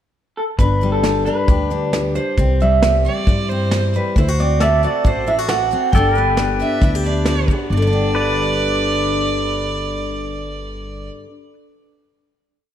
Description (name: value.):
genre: honky-tonk and classic country.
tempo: 135 BPM.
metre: 4/4.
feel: straight.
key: G major.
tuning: A4 = 441 Hz.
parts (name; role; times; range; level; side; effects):
electric guitar through a small old amp; melody; 0.4-7.2 s; A4 to G5; -20 LUFS; right 3 dB; analog delay.
picked steel-string acoustic guitar; accompaniment; 0.6-11.4 s; G2 to G4; -22 LUFS; left 3 dB; none.
upright bass; bass; 0.6-11.1 s; G1 to G2; -20 LUFS; equal; none.
soft brush drum kit; drums; 0.6-7.6 s; hi-hat, kick drum, snare drum; -20 LUFS; equal; none.
clear fiddle; second line; 3.0-3.8, 6.6-11.1 s; C5 to E5; -23 LUFS; right 4 dB; none.
pedal steel guitar; sustained chords; 4.6-11.5 s; A4 to D5; -25 LUFS; left 1 dB; lush chorus.
room: moderate plate reverb, RT60 1.8 s, studio reverb.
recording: dreamy mix soaked in reverb.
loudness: -15 LUFS.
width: side -10 dB against mid.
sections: 0.0-0.6 pickup bar; 0.6-7.7 A section; 7.7-11.2 final chord.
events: none.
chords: 0.0 N.C.; 0.6 G; 2.4 C; 4.2 D7; 5.9 G.